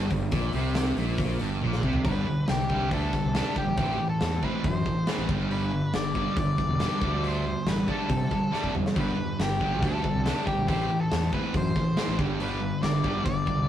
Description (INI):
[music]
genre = classic rock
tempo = 139 BPM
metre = 4/4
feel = straight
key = unclear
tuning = A4 = 438 Hz
[part]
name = overdriven electric guitar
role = riff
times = 0.0-13.7 s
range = G2 to A3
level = -31 LUFS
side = left 4 dB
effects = none
[part]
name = sludgy distorted guitar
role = riff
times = 0.0-13.7 s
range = G2 to D4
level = -31 LUFS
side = right 5 dB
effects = overdrive
[part]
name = fuzz fingered electric bass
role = bass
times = 0.0-13.7 s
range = E1 to C3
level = -30 LUFS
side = equal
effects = overdrive
[part]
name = big rock drum kit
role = drums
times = 0.1-13.6 s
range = hi-hat, kick drum, snare drum, toms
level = -30 LUFS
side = equal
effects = none
[part]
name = octave-fuzz lead guitar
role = melody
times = 2.0-13.7 s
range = G4 to D5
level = -32 LUFS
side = left 1 dB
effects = distortion
[sound]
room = moderate stone room reverb, RT60 1.1 s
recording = rough rehearsal-room recording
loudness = -24 LUFS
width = side -11 dB against mid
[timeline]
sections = 0.0-2.1 A section; 2.1-13.7 B section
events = drum fill 1.6-2.1, 8.5-9.0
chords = 0.0 Gmadd11; 2.1 G; 2.9 Dsus4; 3.8 Am; 5.3 G; 7.0 Dsus4; 9.0 G; 9.8 Dsus4; 10.7 Am; 12.2 G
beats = | 0.33 0.76 1.19 1.62 | 2.05 2.48 2.92 3.35 | 3.78 4.21 4.64 5.08 | 5.51 5.94 6.37 6.80 | 7.24 7.67 8.10 8.53 | 8.96 9.39 9.82 10.25 | 10.68 11.11 11.54 11.97 | 12.40 12.83 13.26